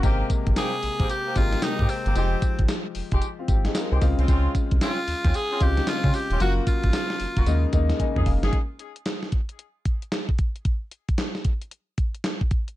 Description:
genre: R&B, new jack swing.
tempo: 113 BPM.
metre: 4/4.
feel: swing 63% on 16ths.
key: unclear.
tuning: A4 = 440 Hz.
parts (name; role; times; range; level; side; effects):
clear baby grand piano; accompaniment; 0.0-8.6 s; C3 to Ab5; -30 LUFS; left 5 dB; none.
warm horn section; stabs; 0.0-8.6 s; Ab3 to Ab4; -32 LUFS; equal; ping-pong delay.
round analog bass; bass; 0.0-8.5 s; Eb1 to Db3; -23 LUFS; equal; none.
gated 80s digital drum machine; drums; 0.0-12.8 s; handclaps, hi-hat, kick drum, snare drum, tambourine; -24 LUFS; equal; gated reverb, gated reverb snare, vintage 12-bit sampler grit.
raspy tenor saxophone; melody; 0.6-7.7 s; C4 to Ab4; -28 LUFS; equal; none.
room: little or no reverb.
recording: dark, warm production.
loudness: -22 LUFS.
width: side -16 dB against mid.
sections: 0.0-8.5 A section; 8.5-12.8 B section.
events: grand piano fill 7.7-8.5; drum fill 8.0-8.5.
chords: 0.0 Abmaj9; 2.2 Fm9; 4.0 Dbmaj7; 6.4 Gbmaj7; 7.5 Eb7sus4; 8.5 N.C..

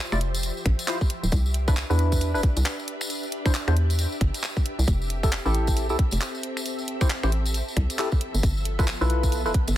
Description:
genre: UK garage, two-step garage.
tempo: 135 BPM.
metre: 4/4.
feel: swing 60% on 16ths.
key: unclear.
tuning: A4 = 440 Hz.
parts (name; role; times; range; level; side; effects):
soft string machine; sustained chords; 0.0-9.8 s; F3 to E5; -34 LUFS; equal; ensemble chorus, vintage 12-bit sampler grit, sidechain pumping.
percussive organ stab; stabs; 0.1-9.5 s; D4 to D5; -29 LUFS; equal; analog chorus, tape echo.
hollow knocking FM bass; bass; 0.1-9.7 s; D1 to E2; -24 LUFS; equal; none.
garage drum kit; drums; 0.1-9.7 s; finger snaps, handclaps, hi-hat; -31 LUFS; equal; studio reverb.
tambourine; percussion; 0.1-9.7 s; none; -36 LUFS; left 2 dB; none.
electronic kick drum; drums; 0.7-9.7 s; none; -22 LUFS; equal; studio reverb.
room: digital ambience.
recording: dense, heavily limited modern master.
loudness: -22 LUFS.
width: side -13 dB against mid.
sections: 0.0-9.8 A section.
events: none.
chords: 0.0 Dm9; 1.3 Cmaj9; 4.9 Fmaj7; 8.2 G13.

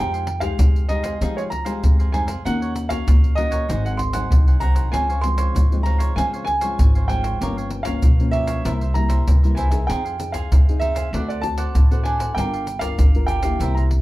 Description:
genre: samba and choro.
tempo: 97 BPM.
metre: 4/4.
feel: straight.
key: F minor.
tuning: A4 = 440 Hz.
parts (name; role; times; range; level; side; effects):
warm baby grand piano; melody; 0.0-13.8 s; Db5 to C6; -26 LUFS; right 2 dB; plate reverb.
cavaquinho; accompaniment; 0.0-13.9 s; D4 to Gb5; -33 LUFS; right 3 dB; none.
nylon-string guitar; accompaniment; 0.0-14.0 s; G2 to Bb4; -28 LUFS; left 3 dB; none.
upright bass; bass; 0.0-14.0 s; G1 to F3; -23 LUFS; equal; none.
egg shaker, pandeiro and surdo; percussion; 0.1-14.0 s; none; -19 LUFS; equal; none.
room: wet small room reverb, RT60 0.5 s.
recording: heard from further back in the room.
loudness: -17 LUFS.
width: side -18 dB against mid.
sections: 0.0-14.0 A section.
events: none.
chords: 0.0 Fm9; 2.5 Ebm7; 3.7 Ab7; 4.9 Dbmaj7; 7.4 Gm7b5; 8.6 C7; 9.9 Fm7; 11.1 D7; 12.4 Gm7.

